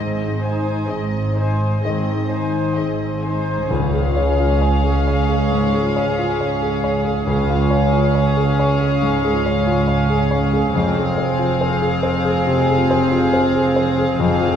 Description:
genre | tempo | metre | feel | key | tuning
cinematic | 69 BPM | 4/4 | uneven beats, rubato | Db major | A4 = 444 Hz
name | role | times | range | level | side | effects
clear studio violin section | second line | 0.0-14.6 s | Ab4 to Ab5 | -26 LUFS | left 1 dB | none
warm concert grand piano | accompaniment | 0.0-14.6 s | Db2 to Eb5 | -21 LUFS | left 1 dB | none
warm studio viola section | accompaniment | 0.0-14.6 s | C4 to C5 | -24 LUFS | right 1 dB | none
concert harp | arpeggios | 0.0-14.6 s | Ab2 to C6 | -25 LUFS | left 3 dB | none
dark chamber cello section | bass | 0.0-14.6 s | Db2 to Ab2 | -27 LUFS | right 2 dB | none
warm studio double bass section | bass | 0.0-14.6 s | F1 to Db2 | -22 LUFS | right 3 dB | none
warm studio violin section | melody | 3.7-14.6 s | F5 | -26 LUFS | left 3 dB | none
timpani | percussion | 3.7-5.0 s | Db3 | -29 LUFS | equal | none
room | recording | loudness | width
wet concert hall reverb, RT60 2.0 s | heard from further back in the room | -16 LUFS | side -8 dB against mid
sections
0.0-3.7 A section; 3.7-14.6 A section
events
none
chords
0.0 Ab; 3.7 Db; 10.7 Fm

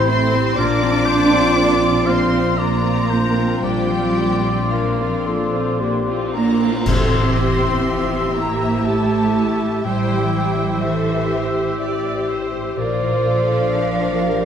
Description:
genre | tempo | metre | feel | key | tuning
cinematic, emotional film score for orchestra | 55-62 BPM | 3/4 | rubato | A phrygian | A4 = 438 Hz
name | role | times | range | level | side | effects
rich symphonic violin section | melody | 0.0-14.4 s | C5 to D6 | -28 LUFS | left 4 dB | none
clear oboe | second line | 0.0-14.4 s | Bb4 to F5 | -27 LUFS | equal | none
mellow clarinet | second line | 0.0-14.4 s | E4 to C5 | -26 LUFS | equal | none
mellow flute section | second line | 0.0-14.4 s | E5 to C6 | -28 LUFS | left 1 dB | none
warm symphonic violin section | second line | 0.0-14.4 s | F4 to C6 | -28 LUFS | left 4 dB | none
rich symphonic viola section | accompaniment | 0.0-14.4 s | F3 to D5 | -25 LUFS | right 1 dB | none
mellow French horn section | sustained chords | 0.0-14.4 s | C4 to D5 | -25 LUFS | left 2 dB | none
concert harp | arpeggios | 0.0-14.4 s | A2 to E5 | -26 LUFS | left 5 dB | none
warm symphonic cello section | bass | 0.0-14.4 s | E3 to D4 | -22 LUFS | right 3 dB | none
warm symphonic double bass section | bass | 0.0-14.4 s | A1 to Bb1 | -25 LUFS | right 3 dB | none
cymbal swell, clash cymbals and concert bass drum | percussion | 3.6-8.8 s | none | -26 LUFS | equal | none
timpani | percussion | 6.9-8.3 s | A2 | -25 LUFS | left 1 dB | none
room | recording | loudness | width
wet scoring stage reverb, RT60 1.8 s | none | -16 LUFS | side -8 dB against mid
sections
0.0-6.9 A section; 6.9-14.4 B section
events
band accent 6.9-7.9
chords
0.0 Am7; 0.6 Bbadd9; 6.9 Am7; 12.8 Bbadd9

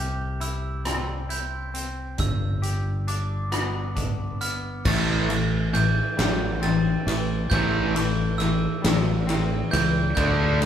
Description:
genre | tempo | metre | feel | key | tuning
post-rock | 45 BPM (dotted quarters) | 6/8 | straight | A minor | A4 = 439 Hz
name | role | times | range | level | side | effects
glockenspiel with brass mallets | arpeggios | 0.0-10.7 s | D6 to A6 | -31 LUFS | right 6 dB | none
twangy electric guitar | arpeggios | 0.0-10.7 s | G2 to G4 | -32 LUFS | left 5 dB | none
fingered electric bass | bass | 0.0-10.7 s | G1 to D2 | -27 LUFS | equal | none
huge arena drum kit | drums | 0.4-10.7 s | crash cymbal, hi-hat, kick drum, ride cymbal, rim click, snare drum | -28 LUFS | equal | none
distorted electric guitar | riff | 4.9-10.7 s | A2 to D4 | -24 LUFS | left 1 dB | distortion
room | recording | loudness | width
moderate large studio reverb, RT60 1.0 s | band playing live in one room | -22 LUFS | side -9 dB against mid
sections
0.0-4.9 A section; 4.9-10.7 B section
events
build-up 4.9-10.7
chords
0.0 C; 2.2 G; 4.9 Am7

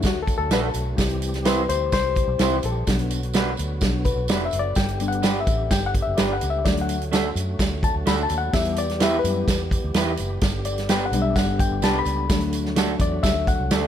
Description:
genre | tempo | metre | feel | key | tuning
uptempo 1960s-style soul | 127 BPM | 4/4 | straight | D mixolydian | A4 = 440 Hz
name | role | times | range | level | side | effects
barky reed electric piano | accompaniment | 0.0-13.9 s | F#3 to B5 | -25 LUFS | left 5 dB | overdrive
percussive tonewheel organ | sustained chords | 0.0-13.9 s | D3 to G4 | -33 LUFS | right 2 dB | slow rotary speaker
vintage muted fingered electric bass | bass | 0.0-13.9 s | F1 to F#2 | -27 LUFS | equal | none
natural country drum kit | drums | 0.0-13.8 s | hi-hat, kick drum, snare drum | -24 LUFS | right 1 dB | none
tambourine | percussion | 0.0-13.8 s | none | -36 LUFS | right 6 dB | none
electric guitar through a small old amp | stabs | 0.5-13.9 s | A3 to C5 | -28 LUFS | right 4 dB | vibrato effect
room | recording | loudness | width
light reverb | none | -20 LUFS | side -10 dB against mid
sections
0.0-13.9 A section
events
reed electric piano solo 0.0-13.9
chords
0.0 D; 1.0 C; 2.9 Bm; 4.8 G; 6.6 D; 8.5 Em; 10.4 G; 12.3 D

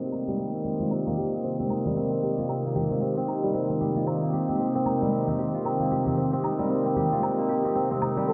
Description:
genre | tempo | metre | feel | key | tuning
organic downtempo | 114 BPM | 4/4 | swing 60% on 16ths | C minor | A4 = 440 Hz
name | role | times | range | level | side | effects
pedal harmonium | accompaniment | 0.0-8.3 s | C3 to A4 | -31 LUFS | equal | tape echo, slapback echo
warbly tape-like pad | sustained chords | 0.0-8.3 s | C2 to D5 | -33 LUFS | equal | chorus, built-in reverb, phaser
kora | arpeggios | 0.0-8.3 s | G3 to G4 | -32 LUFS | equal | low-pass filter, tape echo, slapback echo
shaker and woodblock | drums | 0.0-8.3 s | none | -38 LUFS | equal | low-pass filter on hats, low-pass filter on perc, low-pass filter on snare
congas | percussion | 0.1-8.3 s | none | -36 LUFS | equal | slapback echo
trumpet with bucket mute | melody | 8.3 s | A4 | -27 LUFS | equal | none
room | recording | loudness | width
wet lush hall reverb, RT60 1.9 s, small room reverb | big arena sound, low-pass filter | -26 LUFS | mono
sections
0.0-8.3 A section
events
filter sweep on kora 0.0-8.3; filter sweep 0.0-8.3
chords
0.0 Cmadd9

